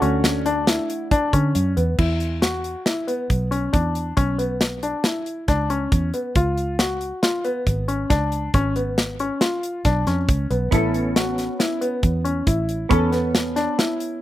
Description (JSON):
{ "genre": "progressive instrumental, band music in an uneven meter", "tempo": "137 BPM", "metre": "5/4", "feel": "straight", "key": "E mixolydian", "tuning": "A4 = 440 Hz", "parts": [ { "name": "hollow-body jazz guitar", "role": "accompaniment", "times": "0.0-2.0, 10.7-14.2 s", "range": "A3 to A4", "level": "-26 LUFS", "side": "right 2 dB", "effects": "double-tracked left and right, slapback echo" }, { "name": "clear concert grand piano", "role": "arpeggios", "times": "0.0-14.2 s", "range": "B3 to F#4", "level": "-24 LUFS", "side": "left 2 dB", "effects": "slapback echo" }, { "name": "fingered electric bass", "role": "bass", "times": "0.0-13.7 s", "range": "G#1 to D3", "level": "-23 LUFS", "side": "right 1 dB", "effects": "none" }, { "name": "modern studio drum kit", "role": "drums", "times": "0.0-14.1 s", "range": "crash cymbal, hi-hat, kick drum, snare drum", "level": "-22 LUFS", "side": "equal", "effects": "none" } ], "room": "little or no reverb", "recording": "recorded outdoors, with no room sound", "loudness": "-19 LUFS", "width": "side -14 dB against mid", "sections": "0.0-2.0 A section; 2.0-14.2 B section", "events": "none", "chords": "0.0 D; 2.0 E5; 6.4 C#; 10.7 Aadd9" }